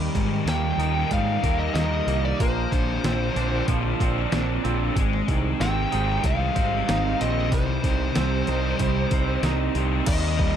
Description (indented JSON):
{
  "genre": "rock, shoegaze and dream pop",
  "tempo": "94 BPM",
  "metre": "4/4",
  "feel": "straight",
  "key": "C minor",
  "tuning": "A4 = 440 Hz",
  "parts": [
    { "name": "twangy electric guitar", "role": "arpeggios", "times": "0.0-10.6 s", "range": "F3 to Eb4", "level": "-33 LUFS", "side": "right 13 dB", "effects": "analog chorus, analog delay" },
    { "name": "raw garage guitar", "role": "riff", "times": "0.0-10.6 s", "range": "Ab2 to Eb4", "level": "-30 LUFS", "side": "right 13 dB", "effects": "overdrive, reverse reverb" },
    { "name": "thick fuzz guitar", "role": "riff", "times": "0.0-10.6 s", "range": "C3 to C5", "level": "-28 LUFS", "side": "left 12 dB", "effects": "distortion, analog chorus" },
    { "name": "overdriven picked electric bass", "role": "bass", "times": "0.0-10.5 s", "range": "Ab1 to Ab2", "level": "-26 LUFS", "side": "equal", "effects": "none" },
    { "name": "detuned 8-bit digital drum machine", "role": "drums", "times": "0.1-10.5 s", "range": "crash cymbal, hi-hat, kick drum, snare drum", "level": "-26 LUFS", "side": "equal", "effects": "none" },
    { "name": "fuzz lead guitar", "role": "melody", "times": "0.5-10.6 s", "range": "C5 to G5", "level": "-29 LUFS", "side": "left 2 dB", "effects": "distortion, analog delay" }
  ],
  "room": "light reverb, digital ambience",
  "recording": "dark, warm production",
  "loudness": "-21 LUFS",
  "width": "side -9 dB against mid",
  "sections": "0.0-10.1 A section",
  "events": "none",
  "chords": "0.0 Eb; 2.4 Bbadd9; 5.0 Abmaj7; 7.5 Cm",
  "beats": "0.47 1.11 1.75 | 2.39 3.04 3.68 4.32 | 4.96 5.60 6.24 6.88 | 7.52 8.16 8.80 9.44 | 10.07"
}